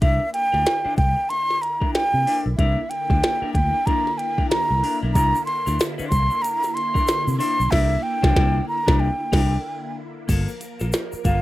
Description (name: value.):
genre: funk.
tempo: 94 BPM.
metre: 4/4.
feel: swing 60% on 16ths.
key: unclear.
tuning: A4 = 444 Hz.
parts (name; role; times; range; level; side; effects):
breathy mellow silver concert flute; melody; 0.0-11.4 s; E5 to C6; -22 LUFS; right 1 dB; none.
semi-hollow electric guitar; accompaniment; 0.0-11.4 s; Bb3 to C5; -29 LUFS; left 5 dB; none.
phased string machine; sustained chords; 0.0-11.4 s; D3 to Bb4; -33 LUFS; equal; ensemble chorus, phaser.
fingered electric bass; bass; 0.0-11.4 s; G1 to C3; -22 LUFS; equal; none.
glitchy drum kit; drums; 0.0-11.4 s; crash cymbal, hi-hat, kick drum, snare drum; -22 LUFS; equal; none.
egg shaker; percussion; 5.2-11.4 s; none; -39 LUFS; left 1 dB; none.
room: little or no reverb.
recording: rough home demo mix.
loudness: -19 LUFS.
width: side -16 dB against mid.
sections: 0.0-10.3 A section; 10.3-11.4 B section.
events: band accent 7.7-10.3; flute solo 10.3-11.4.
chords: 0.0 C9; 10.3 Gm9.